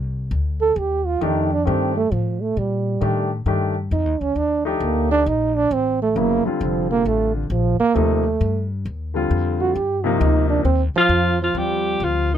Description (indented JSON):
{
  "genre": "modal jazz",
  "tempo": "134 BPM",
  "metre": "4/4",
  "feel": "swing 66% on 8ths",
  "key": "Eb lydian",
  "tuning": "A4 = 439 Hz",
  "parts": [
    { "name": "upright bass", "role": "bass", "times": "0.0-12.4 s", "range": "F1 to Bb2", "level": "-23 LUFS", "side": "left 2 dB", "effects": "none" },
    { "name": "mellow trombone", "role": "second line", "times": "0.6-12.4 s", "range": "D3 to A4", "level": "-20 LUFS", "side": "right 5 dB", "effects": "none" },
    { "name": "warm grand piano", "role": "accompaniment", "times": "1.2-12.4 s", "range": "C3 to G4", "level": "-23 LUFS", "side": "left 3 dB", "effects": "none" },
    { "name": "breathy alto saxophone", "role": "melody", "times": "11.0-12.4 s", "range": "Eb4 to G4", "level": "-19 LUFS", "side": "left 2 dB", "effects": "none" }
  ],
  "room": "little or no reverb",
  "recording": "close, detailed microphones",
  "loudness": "-18 LUFS",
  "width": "side -10 dB against mid",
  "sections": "0.0-11.6 A section",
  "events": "trombone solo 0.0-11.6",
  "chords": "0.0 Ebmaj9"
}